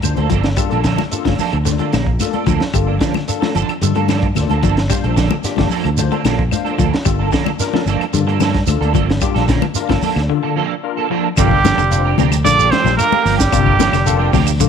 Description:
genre	afrobeat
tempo	111 BPM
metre	4/4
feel	straight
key	G minor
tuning	A4 = 441 Hz
part	barky tine electric piano	accompaniment	0.0-14.7 s	Bb3 to C5	-25 LUFS	left 13 dB	overdrive, ensemble chorus
part	fingered electric bass	bass	0.0-14.7 s	F1 to G2	-18 LUFS	equal	none
part	crunchy breakbeat drum kit	drums	0.0-14.7 s	hi-hat, kick drum, snare drum	-20 LUFS	equal	none
part	claves	percussion	0.0-14.6 s	none	-30 LUFS	left 15 dB	none
part	congas	percussion	0.0-14.7 s	none	-24 LUFS	left 14 dB	none
part	shekere	percussion	0.0-14.7 s	none	-23 LUFS	right 6 dB	none
part	electric guitar at the edge of break-up	stabs	0.2-14.5 s	F3 to A4	-21 LUFS	right 12 dB	ensemble chorus
part	electric guitar at the edge of break-up	arpeggios	0.3-14.7 s	C3 to G3	-23 LUFS	left 12 dB	tremolo
part	clear trumpet	melody	11.4-14.4 s	G4 to D5	-16 LUFS	right 4 dB	none
part	growling tenor saxophone	second line	11.4-14.4 s	G3 to D4	-25 LUFS	right 13 dB	none
room	light reverb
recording	1960s-style stereo with parts hard left and right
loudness	-13 LUFS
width	side -7 dB against mid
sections	0.0-11.4 A section; 11.4-14.7 B section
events	break 10.3-11.4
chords	0.0 Gm9

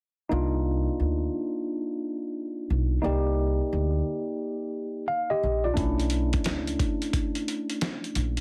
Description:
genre	hip hop, jazz-hop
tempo	88 BPM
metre	4/4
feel	swing 66% on 16ths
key	unclear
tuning	A4 = 445 Hz
part	tine electric piano	accompaniment	0.3-8.4 s	A3 to F5	-31 LUFS	equal	none
part	upright bass	bass	0.3-8.4 s	Bb1 to D2	-29 LUFS	equal	none
part	dusty soul sampler-style drum kit	drums	5.8-8.4 s	hi-hat, kick drum, snare drum	-32 LUFS	equal	none
room	moderate studio reverb, RT60 0.6 s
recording	heavily compressed radio sound, multiband compression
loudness	-28 LUFS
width	mono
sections	0.3-8.4 A section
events	none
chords	0.3 Cm11; 5.8 Bm11

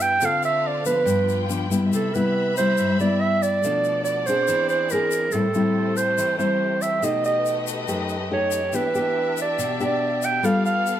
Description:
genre	bossa nova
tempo	141 BPM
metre	4/4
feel	straight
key	C major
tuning	A4 = 440 Hz
part	breathy clarinet	melody	0.0-11.0 s	A4 to G5	-22 LUFS	right 3 dB	plate reverb
part	nylon-string guitar	accompaniment	0.0-11.0 s	F#2 to A4	-24 LUFS	left 2 dB	none
part	warm symphonic violin section	sustained chords	0.0-11.0 s	A3 to B5	-31 LUFS	left 3 dB	none
part	egg shaker	percussion	0.0-11.0 s	none	-35 LUFS	left 12 dB	none
room	moderate large studio reverb, RT60 1.0 s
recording	none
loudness	-20 LUFS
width	side -11 dB against mid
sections	0.0-1.9 A section; 1.9-11.0 B section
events	clarinet solo 0.0-1.9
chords	0.2 Dm7; 1.1 G7; 1.9 Cmaj7; 3.6 Bm7b5; 4.5 Eaug7; 5.3 Am7; 7.0 B7b13; 8.7 Em7; 10.4 G9

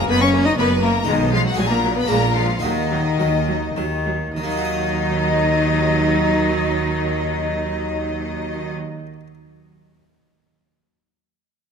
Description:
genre	classical, baroque-style concerto movement with solo episodes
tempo	99-123 BPM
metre	3/4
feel	straight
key	Eb minor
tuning	A4 = 440 Hz
part	rich cello	melody	0.0-8.7 s	Eb3 to Eb4	-23 LUFS	left 2 dB	none
part	rich chamber violin section	melody	0.0-8.7 s	Eb5 to Eb6	-25 LUFS	left 5 dB	none
part	clear studio violin section	second line	0.0-8.7 s	Eb4 to Eb5	-28 LUFS	left 4 dB	none
part	harpsichord	accompaniment	0.0-9.3 s	Gb2 to Eb5	-29 LUFS	right 4 dB	none
part	clear studio cello section	bass	0.0-8.7 s	Gb2 to Eb3	-25 LUFS	right 2 dB	none
part	rich chamber double bass section	bass	0.0-8.7 s	Gb1 to Eb2	-26 LUFS	right 3 dB	none
part	clear symphonic viola section	accompaniment	0.1-8.7 s	Gb3 to Bb3	-26 LUFS	right 3 dB	none
room	moderate concert hall reverb, RT60 2.2 s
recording	none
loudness	-17 LUFS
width	side -6 dB against mid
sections	0.0-4.4 A section; 4.4-8.0 B section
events	slowing down 0.3-4.4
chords	0.0 Ebm/Gb; 1.1 Abm/Cb; 1.6 Ebm/Bb; 2.1 Bb7; 2.6 Ebm

